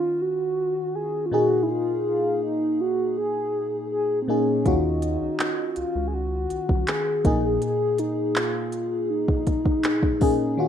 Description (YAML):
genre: contemporary R&B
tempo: 81 BPM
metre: 4/4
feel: straight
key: unclear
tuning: A4 = 440 Hz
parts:
  - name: mellow horn-like synth lead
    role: melody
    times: 0.0-10.7 s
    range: C4 to Ab4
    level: -25 LUFS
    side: equal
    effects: chorus, digital delay
  - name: FM electric piano with soft pad layer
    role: accompaniment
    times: 0.0-10.7 s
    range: Bb2 to Ab4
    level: -26 LUFS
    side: left 1 dB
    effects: chorus
  - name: rubbery square bass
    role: bass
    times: 4.7-7.6 s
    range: Bb1 to Eb2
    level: -29 LUFS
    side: right 1 dB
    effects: none
  - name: smooth R&B drum kit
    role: drums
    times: 4.7-10.4 s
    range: handclaps, hi-hat, kick drum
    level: -24 LUFS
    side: right 1 dB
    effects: none
room: light reverb, digital ambience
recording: rough home demo mix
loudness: -21 LUFS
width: side -9 dB against mid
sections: 0.0-10.7 A section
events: none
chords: 0.0 Ebm9; 1.3 Bb7sus4; 4.7 Ebm9; 7.2 Bb7sus4